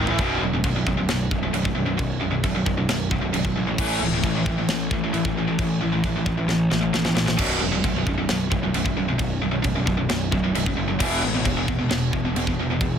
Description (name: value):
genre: heavy metal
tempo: 133 BPM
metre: 4/4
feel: straight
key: unclear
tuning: A4 = 443 Hz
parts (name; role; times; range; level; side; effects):
- tight distorted guitar; riff; 0.0-13.0 s; B1 to A3; -23 LUFS; equal; distortion
- fuzz picked electric bass; bass; 0.0-13.0 s; B0 to A#1; -27 LUFS; equal; overdrive
- tight metal drum kit; drums; 0.1-12.9 s; china cymbal, crash cymbal, kick drum, snare drum, toms; -26 LUFS; equal; soft clipping on kick
room: light reverb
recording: dense, heavily limited modern master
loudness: -20 LUFS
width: side -8 dB against mid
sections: 0.2-13.0 A section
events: drum fill 0.0, 6.5-7.4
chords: 0.2 B5; 3.8 A5; 7.4 B5; 11.0 E5